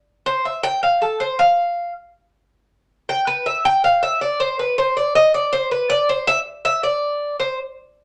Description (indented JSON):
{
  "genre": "latin",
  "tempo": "160 BPM",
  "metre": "4/4",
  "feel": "straight",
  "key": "unclear",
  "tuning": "A4 = 439 Hz",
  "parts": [
    { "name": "Cuban tres", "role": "solo", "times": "0.3-7.6 s", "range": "A4 to G5", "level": "-19 LUFS", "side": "equal", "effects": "none" }
  ],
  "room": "moderate studio reverb, RT60 0.5 s",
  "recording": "none",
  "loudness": "-19 LUFS",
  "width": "mono",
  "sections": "0.0-8.0 A section",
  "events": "Cuban tres solo 0.0-8.0",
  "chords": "none"
}